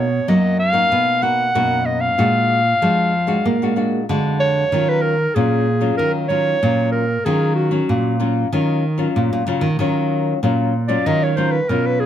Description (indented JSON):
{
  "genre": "samba and choro",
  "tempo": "95 BPM",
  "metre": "4/4",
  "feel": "straight",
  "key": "Eb minor",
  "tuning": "A4 = 440 Hz",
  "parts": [
    { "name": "warm clarinet", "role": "melody", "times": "0.0-12.1 s", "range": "Gb4 to F#5", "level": "-18 LUFS", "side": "equal", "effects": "none" },
    { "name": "nylon-string guitar", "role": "accompaniment", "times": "0.0-12.1 s", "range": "F2 to F#4", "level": "-21 LUFS", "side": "left 4 dB", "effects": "none" },
    { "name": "nylon-string guitar", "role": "bass", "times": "0.0-12.1 s", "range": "Bb2 to B3", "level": "-20 LUFS", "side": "right 2 dB", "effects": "none" }
  ],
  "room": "light reverb",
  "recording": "close, detailed microphones",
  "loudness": "-15 LUFS",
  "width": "side -10 dB against mid",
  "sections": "0.0-9.8 A section; 9.8-12.1 B section",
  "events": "clarinet solo 9.8-12.1",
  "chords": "0.0 Bmaj7; 2.2 Bb7b13; 4.7 Ebm9",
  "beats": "0.28 0.92 1.55 | 2.19 2.82 3.46 4.09 | 4.72 5.36 5.99 6.63 | 7.26 7.89 8.53 9.16 | 9.79 10.43 11.06 11.69"
}